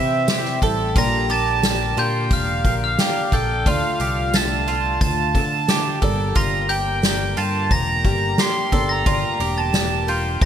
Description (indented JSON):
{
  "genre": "indie folk with a building arrangement",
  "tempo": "89 BPM",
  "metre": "4/4",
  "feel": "straight",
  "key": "unclear",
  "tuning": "A4 = 438 Hz",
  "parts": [
    { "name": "accordion", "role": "melody", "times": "0.0-10.4 s", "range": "E5 to C6", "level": "-24 LUFS", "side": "right 4 dB", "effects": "ping-pong delay" },
    { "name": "glockenspiel with hard plastic mallets", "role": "second line", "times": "0.0-10.5 s", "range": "E6 to C7", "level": "-28 LUFS", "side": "left 3 dB", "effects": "none" },
    { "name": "felt-muted upright piano", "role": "accompaniment", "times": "0.0-10.5 s", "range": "G1 to E5", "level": "-33 LUFS", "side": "right 3 dB", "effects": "none" },
    { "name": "picked twelve-string acoustic guitar", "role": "accompaniment", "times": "0.0-10.5 s", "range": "Bb2 to C5", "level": "-29 LUFS", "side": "left 8 dB", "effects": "analog chorus" },
    { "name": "warm chamber string section", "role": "sustained chords", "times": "0.0-10.5 s", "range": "D3 to G4", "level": "-31 LUFS", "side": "left 3 dB", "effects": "none" },
    { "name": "fingered electric bass", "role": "bass", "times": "0.0-10.5 s", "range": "E1 to D3", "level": "-25 LUFS", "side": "equal", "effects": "none" },
    { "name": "mandolin", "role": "arpeggios", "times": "0.3-10.5 s", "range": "F4 to A4", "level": "-27 LUFS", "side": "right 3 dB", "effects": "ping-pong delay" },
    { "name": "soft-mallet drum kit", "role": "drums", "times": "0.3-10.5 s", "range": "hi-hat, kick drum, snare drum", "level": "-22 LUFS", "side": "equal", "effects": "none" },
    { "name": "tambourine", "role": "percussion", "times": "0.3-9.9 s", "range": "none", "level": "-34 LUFS", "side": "right 9 dB", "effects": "none" }
  ],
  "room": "light reverb, small room ambience",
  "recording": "bright 1980s-style digital production",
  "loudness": "-17 LUFS",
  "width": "side -9 dB against mid",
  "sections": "0.0-10.5 A section",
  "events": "none",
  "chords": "0.0 C; 1.0 Gm/Bb; 3.7 Dm; 6.0 Gm"
}